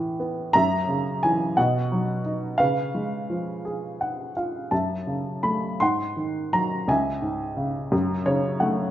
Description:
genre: classical, lyrical solo piano.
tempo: 54-60 BPM (dotted quarters).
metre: 6/8.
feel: rubato.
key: F# minor.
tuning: A4 = 440 Hz.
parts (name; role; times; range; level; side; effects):
dark upright piano; solo; 0.0-8.9 s; C#2 to B#5; -22 LUFS; equal; none.
room: moderate recital hall reverb, RT60 1.5 s.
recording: nothing above 7.8 kHz.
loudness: -22 LUFS.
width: side -12 dB against mid.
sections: 0.0-8.9 A section.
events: upright piano fill 3.6-4.7, 7.9-8.9.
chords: 0.0 Asus2; 0.5 F#7; 1.6 B; 2.6 C#7; 4.7 F#m7; 5.8 G#7; 6.9 C#m; 7.9 F#madd9.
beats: | 0.54 1.57 | 2.58 3.63 | 4.72 5.81 | 6.89 7.93.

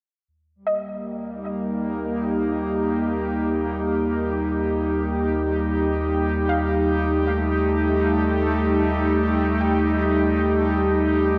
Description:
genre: ambient.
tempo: free time.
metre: none.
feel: none.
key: Eb lydian.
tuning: A4 = 441 Hz.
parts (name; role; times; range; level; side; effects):
warm sub bass; bass; 0.3-11.4 s; Eb2; -30 LUFS; equal; none.
airy breathy pad; sustained chords; 0.7-11.4 s; G3 to G4; -23 LUFS; equal; chorus.
soft round pluck; arpeggios; 0.7-1.7, 6.5-10.6 s; Eb5 to G5; -34 LUFS; equal; analog chorus, diffuse ambient delay.
room: moderate plate reverb, RT60 3.1 s.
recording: dreamy mix soaked in reverb, cassette tape.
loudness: -22 LUFS.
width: mono.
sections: 0.3-11.4 A section.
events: fade-in on sub bass 0.3-11.4; fade-out on synth pluck 0.3-11.4.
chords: 0.3 Eb.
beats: free time.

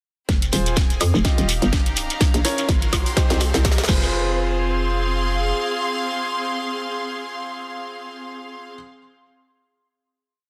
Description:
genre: bass house.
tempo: 125 BPM.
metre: 4/4.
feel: swing 56% on 16ths.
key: F minor.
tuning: A4 = 440 Hz.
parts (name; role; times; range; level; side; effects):
hollow knocking FM bass; bass; 0.3-5.5 s; Eb1 to F2; -24 LUFS; equal; tube saturation, sidechain pumping.
electronic kick drum; drums; 0.3-4.0 s; none; -22 LUFS; equal; overdrive.
house drum kit; drums; 0.3-4.0 s; crash cymbal, hi-hat, snare drum, woodblock; -28 LUFS; equal; overdrive, high-pass filter on snare, high-pass filter on hats, high-pass filter on perc, high-pass filter on cymbals, high-pass filter on room.
shekere; percussion; 0.3-4.1 s; none; -32 LUFS; equal; none.
riser; sound effects; 1.8-4.1 s; none; -35 LUFS; equal; none.
rich symphonic string section; texture; 0.3-8.7 s; C4 to C6; -29 LUFS; equal; sidechain pumping.
warm concert grand piano; stabs; 0.5-8.7 s; Db4 to Eb5; -31 LUFS; equal; sidechain pumping, digital delay.
room: light reverb.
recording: dense, heavily limited modern master.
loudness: -21 LUFS.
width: mono.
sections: 0.3-4.1 build; 4.1-8.0 final chord.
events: build-up 0.3-4.1; drum fill 0.3-4.1; riser 1.8-4.1.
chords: 0.3 Fm; 1.2 Ebadd9; 2.2 Bbmadd9; 3.2 Cm; 3.9 Fm.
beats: | 0.29 0.77 1.25 1.73 | 2.21 2.69 3.17 3.65 | 4.13 4.61 5.09 5.57 | 6.05 6.53 7.01 7.49.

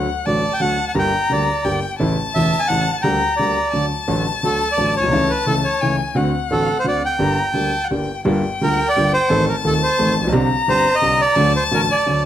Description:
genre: tango.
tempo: 173 BPM.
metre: 3/4.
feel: rubato.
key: G harmonic minor.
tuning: A4 = 435 Hz.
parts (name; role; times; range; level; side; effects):
warm violin; second line; 0.0-12.2 s; F#5 to Bb5; -22 LUFS; left 5 dB; none.
warm concert grand piano; accompaniment; 0.0-12.2 s; Eb1 to A4; -20 LUFS; equal; none.
bandoneon; melody; 0.3-12.2 s; A4 to Ab5; -19 LUFS; right 2 dB; none.
room: moderate large studio reverb, RT60 0.9 s.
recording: none.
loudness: -16 LUFS.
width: side -11 dB against mid.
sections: 0.0-8.3 A section; 8.3-12.3 B section.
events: none.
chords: 0.0 D; 1.0 Gm; 2.0 A; 3.0 Gm/D; 3.7 D; 5.1 A/C#; 6.2 D7; 7.2 Gm; 8.3 Gm7; 9.3 Adim; 10.3 Csus2; 11.4 D.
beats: 0.26 0.61 | 0.95 1.30 1.65 | 1.99 2.34 2.68 | 3.03 3.38 3.72 | 4.08 4.43 4.78 | 5.12 5.47 5.81 | 6.16 6.50 6.85 | 7.20 7.54 7.90 | 8.25 8.60 8.96 | 9.30 9.65 9.99 | 10.34 10.68 11.02 | 11.37 11.72 12.07.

